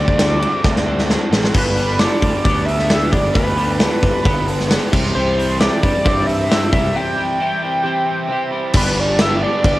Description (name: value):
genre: indie rock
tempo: 133 BPM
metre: 4/4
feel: straight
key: G major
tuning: A4 = 441 Hz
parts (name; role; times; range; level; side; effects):
- overdriven synth lead; melody; 0.0-9.8 s; B4 to G5; -20 LUFS; equal; distortion, chorus
- biting overdriven guitar; riff; 0.0-9.8 s; G2 to G4; -25 LUFS; right 5 dB; wide subtle chorus, cassette tape
- twelve-string electric guitar; riff; 0.0-9.8 s; E3 to A4; -25 LUFS; left 5 dB; cassette tape
- fuzz picked electric bass; bass; 0.0-9.8 s; G1 to G2; -21 LUFS; equal; overdrive
- big rock drum kit; drums; 0.1-9.7 s; crash cymbal, hi-hat, kick drum, ride cymbal, snare drum; -17 LUFS; equal; cassette tape
- overdriven tine electric piano; second line; 7.8-8.7 s; G4 to C5; -27 LUFS; right 8 dB; cassette tape
room: little or no reverb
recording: home recording on cassette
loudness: -14 LUFS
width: side -17 dB against mid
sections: 0.0-1.5 A section; 1.5-8.7 B section; 8.7-9.8 C section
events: drum fill 0.6-1.5; break 7.0-8.7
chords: 0.0 D7sus4; 1.5 G; 4.9 C; 8.7 G